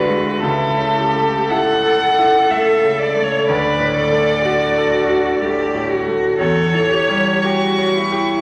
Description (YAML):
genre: classical, slow romantic movement for piano trio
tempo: 53-63 BPM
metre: 3/4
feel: rubato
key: D major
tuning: A4 = 445 Hz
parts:
  - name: rich violin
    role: melody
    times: 0.0-8.4 s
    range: A4 to C#6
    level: -20 LUFS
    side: equal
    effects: none
  - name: rich cello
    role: second line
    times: 0.0-8.4 s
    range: E4 to B4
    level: -22 LUFS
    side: equal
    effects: none
  - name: clear grand piano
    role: accompaniment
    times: 0.0-8.4 s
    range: C#2 to C#5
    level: -22 LUFS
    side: equal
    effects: none
room: wet concert hall reverb, RT60 1.8 s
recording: vinyl crackle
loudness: -16 LUFS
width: mono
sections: 0.0-8.4 A section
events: none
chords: 0.4 A/C#; 3.5 D; 6.4 C#dim/E